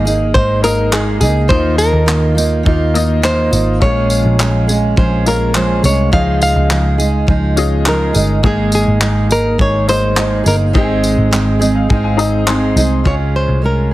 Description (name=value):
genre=acoustic pop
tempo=104 BPM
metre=4/4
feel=straight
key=Ab major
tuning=A4 = 441 Hz
part: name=nylon-string guitar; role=melody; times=0.0-13.9 s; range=Ab4 to F5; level=-17 LUFS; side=equal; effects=plate reverb, tape echo
part: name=fingerpicked steel-string acoustic guitar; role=accompaniment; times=0.0-13.9 s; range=Ab2 to Ab4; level=-17 LUFS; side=right 3 dB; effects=none
part: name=warm upright piano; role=accompaniment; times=0.0-13.9 s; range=Ab3 to C6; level=-22 LUFS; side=left 6 dB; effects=plate reverb
part: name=vintage muted picked electric bass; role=bass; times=0.0-13.9 s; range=G1 to Eb2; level=-15 LUFS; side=equal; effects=none
part: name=cloth-damped thuddy drum kit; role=drums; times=0.1-13.2 s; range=handclaps, kick drum, tambourine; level=-18 LUFS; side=equal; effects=none
room=light reverb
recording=heavily compressed radio sound, multiband compression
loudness=-11 LUFS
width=side -16 dB against mid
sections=0.0-13.1 A section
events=upright piano fill 11.3-13.1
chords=0.0 Absus2; 1.5 Ebsus2; 3.8 Bbm7; 6.1 Dbadd9; 8.4 Absus2; 10.7 Ab; 13.1 Db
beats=0.35 0.93 | 1.50 2.08 2.66 3.24 | 3.81 4.39 4.97 5.55 | 6.12 6.70 7.28 7.86 | 8.44 9.01 9.59 10.17 | 10.74 11.32 11.90 12.48 | 13.06 13.64